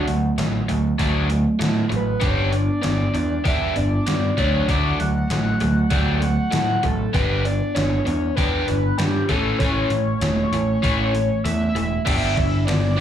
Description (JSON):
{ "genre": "indie rock", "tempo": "98 BPM", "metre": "4/4", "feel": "straight", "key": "D major", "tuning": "A4 = 439 Hz", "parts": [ { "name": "overdriven synth lead", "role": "melody", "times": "0.0-13.0 s", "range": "F#4 to G5", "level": "-26 LUFS", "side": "equal", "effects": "phaser, slapback echo" }, { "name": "overdriven electric guitar", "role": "riff", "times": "0.0-13.0 s", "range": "E3 to G4", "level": "-22 LUFS", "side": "equal", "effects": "none" }, { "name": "growling picked electric bass", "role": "bass", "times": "0.1-13.0 s", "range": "E1 to A2", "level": "-23 LUFS", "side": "equal", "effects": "overdrive" }, { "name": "gated 80s digital drum machine", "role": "drums", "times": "0.1-12.8 s", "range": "crash cymbal, hi-hat, kick drum, ride cymbal, snare drum", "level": "-25 LUFS", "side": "equal", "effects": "gated reverb, gated reverb snare, overdrive" } ], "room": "light reverb", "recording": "live gig heard through the venue's PA, club reverb", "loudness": "-18 LUFS", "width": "side -10 dB against mid", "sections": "0.0-12.1 A section", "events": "kick and snare drop out 11.5-12.1", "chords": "0.0 D; 2.2 G; 4.4 D; 7.1 G; 9.3 A; 12.1 G" }